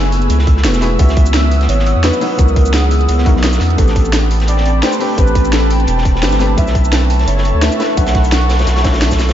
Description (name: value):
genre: liquid drum and bass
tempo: 172 BPM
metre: 4/4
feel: swing 54% on 16ths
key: unclear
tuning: A4 = 440 Hz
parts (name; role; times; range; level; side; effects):
- warm velvety synth lead; melody; 0.0-9.0 s; G#4 to F#5; -22 LUFS; equal; chorus, diffuse ambient delay
- felt-muted upright piano; accompaniment; 0.0-9.3 s; F#3 to G#5; -21 LUFS; left 1 dB; diffuse ambient delay
- ethereal airy pad; sustained chords; 0.0-9.3 s; B3 to E6; -20 LUFS; equal; ensemble chorus, built-in reverb
- saturated sub bass; bass; 0.0-9.3 s; E1 to E2; -14 LUFS; equal; tube saturation
- crunchy breakbeat drum kit; drums; 0.1-9.3 s; hi-hat, snare drum; -25 LUFS; equal; high-pass filter on hats, studio reverb, high-pass filter on snare, high-pass filter on room
- drum and bass drum kit; drums; 0.1-9.3 s; cabasa, hi-hat, snare drum; -21 LUFS; right 1 dB; studio reverb
- electronic kick drum; drums; 0.5-9.2 s; none; -13 LUFS; equal; studio reverb
room: light reverb, small room ambience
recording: nothing above 7.6 kHz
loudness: -10 LUFS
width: side -11 dB against mid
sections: 0.0-9.3 A section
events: none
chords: 0.0 F#m11; 1.0 C#m11; 3.8 Am11; 6.6 Bm11